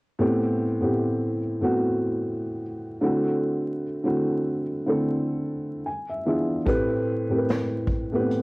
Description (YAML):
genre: lo-fi hip hop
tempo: 74 BPM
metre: 4/4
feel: swing 55% on 16ths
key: A dorian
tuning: A4 = 440 Hz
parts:
  - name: felt-muted upright piano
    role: accompaniment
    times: 0.2-8.4 s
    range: A2 to G#5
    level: -23 LUFS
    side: equal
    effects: low-pass filter, cassette tape
  - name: vintage brush drum kit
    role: drums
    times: 6.7-8.4 s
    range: hi-hat, kick drum, snare drum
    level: -28 LUFS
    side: equal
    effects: cassette tape
room: moderate studio reverb, RT60 0.6 s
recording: home recording on cassette, vinyl crackle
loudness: -23 LUFS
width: side -24 dB against mid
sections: 0.2-8.4 A section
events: felt piano fill 5.4-6.7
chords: 0.2 Am9; 3.0 D9; 5.9 E7b9; 6.7 Am9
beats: | 0.18 0.99 1.80 2.61 | 3.42 4.23 5.04 5.85 | 6.66 7.47 8.29